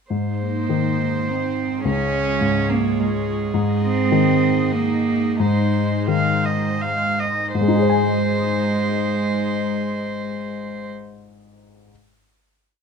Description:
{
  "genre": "neoclassical piano and strings",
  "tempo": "79-107 BPM",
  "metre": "3/4",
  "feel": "rubato",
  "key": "Ab major",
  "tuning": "A4 = 438 Hz",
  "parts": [
    { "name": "dark baby grand piano", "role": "accompaniment", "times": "0.1-11.9 s", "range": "Db2 to Ab5", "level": "-22 LUFS", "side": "left 4 dB", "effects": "none" },
    { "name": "rich viola", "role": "accompaniment", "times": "0.1-10.9 s", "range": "Ab4 to F5", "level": "-26 LUFS", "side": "right 2 dB", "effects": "none" },
    { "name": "phased analog pad", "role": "sustained chords", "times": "0.1-10.9 s", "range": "Ab3 to Eb5", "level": "-28 LUFS", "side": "right 5 dB", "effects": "phaser, chorus" },
    { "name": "warm cello", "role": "second line", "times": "0.4-10.9 s", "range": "Ab3 to Db4", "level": "-23 LUFS", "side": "right 2 dB", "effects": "none" }
  ],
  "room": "light reverb",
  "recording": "minimal, uncompressed stereo recording, faint mains hum",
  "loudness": "-18 LUFS",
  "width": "side -6 dB against mid",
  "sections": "0.1-7.6 theme; 7.6-11.9 final chord",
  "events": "slowing down 2.7-7.6",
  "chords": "0.1 Ab; 1.9 Db; 3.5 Ab"
}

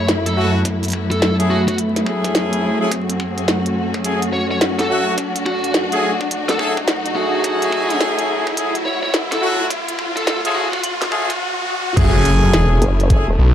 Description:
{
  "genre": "glitch hop",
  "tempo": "106 BPM",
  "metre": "4/4",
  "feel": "swing 63% on 16ths",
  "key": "F# minor",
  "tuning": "A4 = 439 Hz",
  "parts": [
    { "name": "high-gain lead guitar", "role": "melody", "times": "0.0-10.8 s", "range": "F#4 to C#5", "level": "-24 LUFS", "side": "equal", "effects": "distortion, vintage 12-bit sampler grit, ping-pong delay" },
    { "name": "warm symphonic string section", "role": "sustained chords", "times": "0.0-13.5 s", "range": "F#2 to F#4", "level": "-22 LUFS", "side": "equal", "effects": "sidechain pumping" },
    { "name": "riser and impact", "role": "sound effects", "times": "0.0-13.5 s", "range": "none", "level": "-24 LUFS", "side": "equal", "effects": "none" },
    { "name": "glitchy drum kit", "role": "drums", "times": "0.1-13.2 s", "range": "crash cymbal, hi-hat, snare drum", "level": "-21 LUFS", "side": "equal", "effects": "overdrive" },
    { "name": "brilliant horn section", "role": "stabs", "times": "0.4-13.3 s", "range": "A3 to G#4", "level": "-22 LUFS", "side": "left 1 dB", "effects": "sidechain pumping, ping-pong delay" },
    { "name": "electronic kick drum", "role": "drums", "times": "0.7-13.2 s", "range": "none", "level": "-20 LUFS", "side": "equal", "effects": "high-pass filter on kick, high-pass filter on room" },
    { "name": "phased detuned saw bass", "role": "bass", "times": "12.0-13.5 s", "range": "E1 to B1", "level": "-14 LUFS", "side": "equal", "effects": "phaser, tube saturation" },
    { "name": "vowel-sweep wobble bass", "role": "bass", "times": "12.8-13.4 s", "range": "E1 to F#1", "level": "-16 LUFS", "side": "equal", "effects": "chorus" }
  ],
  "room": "light reverb",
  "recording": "vinyl crackle, high-pass filter",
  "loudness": "-16 LUFS",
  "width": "side -10 dB against mid",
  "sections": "0.0-12.0 A section; 12.0-13.5 B section",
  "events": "build-up 0.0-12.0; riser 0.0-12.0; filter sweep 0.0-12.0; drop 12.0-13.5; impact 12.0-13.5",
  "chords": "0.0 F#m7"
}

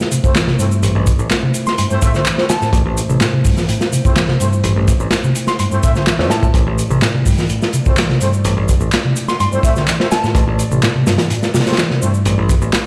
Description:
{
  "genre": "breakbeat, breaks",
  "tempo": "126 BPM",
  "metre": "4/4",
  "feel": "straight",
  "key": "A minor",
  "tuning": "A4 = 442 Hz",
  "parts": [
    { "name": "dark analog pad", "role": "sustained chords", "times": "0.0-12.9 s", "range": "A3 to D5", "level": "-28 LUFS", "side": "equal", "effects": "chorus, sidechain pumping" },
    { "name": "crunchy breakbeat drum kit", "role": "drums", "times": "0.0-12.9 s", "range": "hi-hat, kick drum, snare drum", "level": "-19 LUFS", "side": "equal", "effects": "none" },
    { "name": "electronic shaker and handclaps", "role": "drums", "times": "0.0-12.8 s", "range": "none", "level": "-26 LUFS", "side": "equal", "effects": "none" },
    { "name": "hollow-body short-scale picked electric bass", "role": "riff", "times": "0.1-12.5 s", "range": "G2 to E3", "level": "-20 LUFS", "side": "equal", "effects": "overdrive" },
    { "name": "warm brass ensemble", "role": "stabs", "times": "0.2-12.1 s", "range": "A3 to E5", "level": "-26 LUFS", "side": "equal", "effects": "dub echo" },
    { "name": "picked electric bass", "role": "bass", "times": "0.8-12.7 s", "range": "A1 to A2", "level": "-20 LUFS", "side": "equal", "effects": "none" },
    { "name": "soft synth bell", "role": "melody", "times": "1.7-10.6 s", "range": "A5 to C6", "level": "-26 LUFS", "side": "equal", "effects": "chorus, old record sound, dub echo" }
  ],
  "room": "light reverb, small room ambience",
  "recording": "played on a big sound system in a bare room, stone room reverb",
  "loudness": "-15 LUFS",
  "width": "mono",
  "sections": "0.0-12.9 A section",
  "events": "none",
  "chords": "0.0 Am"
}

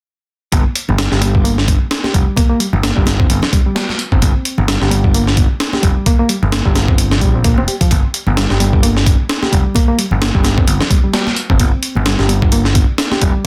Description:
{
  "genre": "breakbeat, breaks",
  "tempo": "130 BPM",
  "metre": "4/4",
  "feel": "swing 57% on 16ths",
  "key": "G minor",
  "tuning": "A4 = 438 Hz",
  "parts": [
    { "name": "overdriven picked electric bass", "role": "bass", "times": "0.5-13.3 s", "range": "F1 to Bb1", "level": "-18 LUFS", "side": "equal", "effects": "none" },
    { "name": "breakbeat sampler-style drum kit", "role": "drums", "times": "0.5-13.3 s", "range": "hi-hat, kick drum, snare drum", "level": "-16 LUFS", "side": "equal", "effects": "none" },
    { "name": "congas", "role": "percussion", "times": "0.5-13.2 s", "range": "none", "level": "-27 LUFS", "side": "equal", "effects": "none" },
    { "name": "reed electric piano", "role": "riff", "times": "1.0-13.4 s", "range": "F3 to G4", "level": "-22 LUFS", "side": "equal", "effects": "tube saturation, digital delay" }
  ],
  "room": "light reverb",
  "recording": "dense, heavily limited modern master",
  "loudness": "-14 LUFS",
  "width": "mono",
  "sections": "0.5-13.5 A section",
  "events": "none",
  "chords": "0.5 Gm"
}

